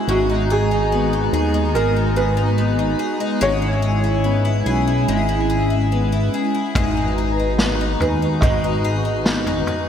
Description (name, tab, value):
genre	dream pop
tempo	72 BPM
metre	4/4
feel	straight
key	unclear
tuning	A4 = 440 Hz
part	felt-muted upright piano	melody	0.0-9.9 s	F#4 to D#5	-24 LUFS	right 2 dB	lush chorus, ping-pong delay
part	hollow soft pad	sustained chords	0.0-9.9 s	G#3 to A#5	-23 LUFS	right 1 dB	ensemble chorus
part	picked twelve-string acoustic guitar	arpeggios	0.0-9.9 s	G#2 to G#4	-23 LUFS	left 3 dB	analog chorus, ping-pong delay
part	chorused synth bass	bass	0.1-9.6 s	G#1 to D#2	-21 LUFS	equal	none
part	vintage drum kit	drums	6.8-9.9 s	kick drum, snare drum, toms	-22 LUFS	equal	gated reverb
room	wet lush hall reverb, RT60 2.7 s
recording	bright 1980s-style digital production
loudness	-16 LUFS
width	side -8 dB against mid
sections	0.0-9.9 A section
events	none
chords	0.1 G#m7; 3.4 E6/G#; 6.8 G#m7